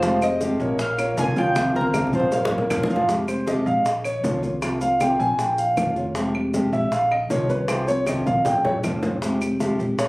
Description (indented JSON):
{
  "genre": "latin, Cuban son and guajira",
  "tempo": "156 BPM",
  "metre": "4/4",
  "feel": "straight",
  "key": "F minor",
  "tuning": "A4 = 442 Hz",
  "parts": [
    { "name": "Cuban tres", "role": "melody", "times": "0.0-2.9 s", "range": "Bb4 to Ab5", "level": "-25 LUFS", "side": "equal", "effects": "none" },
    { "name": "nylon-string guitar", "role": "accompaniment", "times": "0.0-10.0 s", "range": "C3 to G4", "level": "-25 LUFS", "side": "equal", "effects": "none" },
    { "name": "warm concert grand piano", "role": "arpeggios", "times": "0.0-10.1 s", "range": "F3 to Ab5", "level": "-22 LUFS", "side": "equal", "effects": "none" },
    { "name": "upright bass", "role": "bass", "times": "0.0-10.1 s", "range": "F1 to C2", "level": "-29 LUFS", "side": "equal", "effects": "none" },
    { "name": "bongos", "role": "percussion", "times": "0.0-10.1 s", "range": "none", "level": "-29 LUFS", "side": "left 1 dB", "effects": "none" },
    { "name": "congas", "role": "percussion", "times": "0.0-10.1 s", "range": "none", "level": "-31 LUFS", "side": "equal", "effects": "none" },
    { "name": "maracas", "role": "percussion", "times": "0.0-10.1 s", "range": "none", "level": "-41 LUFS", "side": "equal", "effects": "none" },
    { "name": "claves", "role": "percussion", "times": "0.2-9.6 s", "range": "none", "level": "-33 LUFS", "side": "right 1 dB", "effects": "none" }
  ],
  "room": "moderate studio reverb, RT60 0.8 s",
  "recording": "recorded on a phone in the room, club reverb, compression",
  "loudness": "-19 LUFS",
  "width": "side -22 dB against mid",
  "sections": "0.0-3.1 A section; 3.1-10.1 B section",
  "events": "drum fill 1.6-3.1, 8.1-9.2; grand piano solo 3.1-10.1",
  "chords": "0.0 Fmadd9; 0.8 Bbm; 1.6 C7sus4; 2.3 Bbm; 3.1 Fmadd9; 3.9 Bbm; 4.6 C7sus4; 5.4 Bbm; 6.2 Fmadd9; 6.9 Bbm; 7.7 C7sus4; 8.5 Bbm; 9.2 Fmadd9"
}